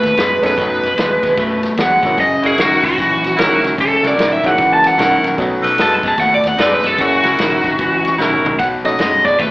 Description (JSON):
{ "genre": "electric blues shuffle", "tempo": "150 BPM", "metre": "4/4", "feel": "swing 63% on 8ths", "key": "unclear", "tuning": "A4 = 440 Hz", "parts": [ { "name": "biting overdriven guitar", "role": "melody", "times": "0.0-9.5 s", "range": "F#4 to A5", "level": "-14 LUFS", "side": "equal", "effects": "phaser, slapback echo" }, { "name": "electric guitar at the edge of break-up", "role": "riff", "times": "0.0-9.5 s", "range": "F#2 to A3", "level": "-19 LUFS", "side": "left 1 dB", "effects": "slapback echo" }, { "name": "vintage muted fingered electric bass", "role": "bass", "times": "0.0-9.5 s", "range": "F#1 to F#2", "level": "-30 LUFS", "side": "equal", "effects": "none" }, { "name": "natural country drum kit", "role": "drums", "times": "0.0-9.5 s", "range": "kick drum, ride cymbal, snare drum, toms", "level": "-23 LUFS", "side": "equal", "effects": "slapback echo" }, { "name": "clear upright piano", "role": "accompaniment", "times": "0.4-9.4 s", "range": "G#3 to A4", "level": "-21 LUFS", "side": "right 1 dB", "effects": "none" }, { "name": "edgy saxophone section", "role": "stabs", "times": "2.4-8.6 s", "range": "D#4 to B4", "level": "-18 LUFS", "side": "equal", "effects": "slapback echo" } ], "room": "light reverb, studio reverb", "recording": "live gig heard through the venue's PA, club reverb, AM radio sound", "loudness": "-12 LUFS", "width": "side -20 dB against mid", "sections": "0.0-8.6 A section", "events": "overdriven electric guitar solo 0.0-8.6; drum fill 8.2-8.6", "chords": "0.0 B7; 2.2 F#7; 5.4 B7; 7.0 F#7; 8.6 B7", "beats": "0.18 | 0.58 0.98 1.38 1.78 | 2.18 2.58 2.98 3.38 | 3.78 4.18 4.58 4.98 | 5.38 5.78 6.18 6.58 | 6.99 7.38 7.79 8.19 | 8.59 8.99 9.39" }